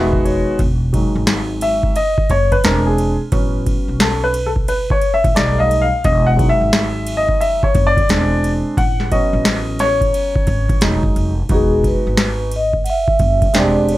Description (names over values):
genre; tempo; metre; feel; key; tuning
hip hop, jazz-hop; 88 BPM; 4/4; swing 64% on 16ths; E major; A4 = 442 Hz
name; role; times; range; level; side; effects
warm baby grand piano; accompaniment; 0.0-14.0 s; D#3 to F#5; -17 LUFS; equal; plate reverb
upright bass; bass; 0.0-14.0 s; E1 to B1; -20 LUFS; equal; none
booming analog drum machine; drums; 0.1-14.0 s; hi-hat, kick drum, ride cymbal, snare drum; -18 LUFS; equal; overdrive
vibraphone with soft mallets; melody; 11.5-14.0 s; G#4 to F#5; -18 LUFS; right 1 dB; plate reverb
room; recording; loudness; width
light reverb; none; -13 LUFS; side -16 dB against mid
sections
0.6-11.5 A section; 11.5-14.0 B section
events
grand piano fill 0.0-0.6; grand piano solo 0.6-11.5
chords
0.0 Emaj9; 2.6 Eaug7; 3.3 A6; 5.4 Baug7; 6.0 Emaj7; 8.1 Eaug7; 8.8 A6; 10.8 Emaj9; 11.5 Emaj7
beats
| 0.59 1.27 1.96 2.64 | 3.32 4.00 4.68 5.37 | 6.05 6.73 7.41 8.09 | 8.78 9.46 10.14 10.82 | 11.50 12.18 12.87 13.55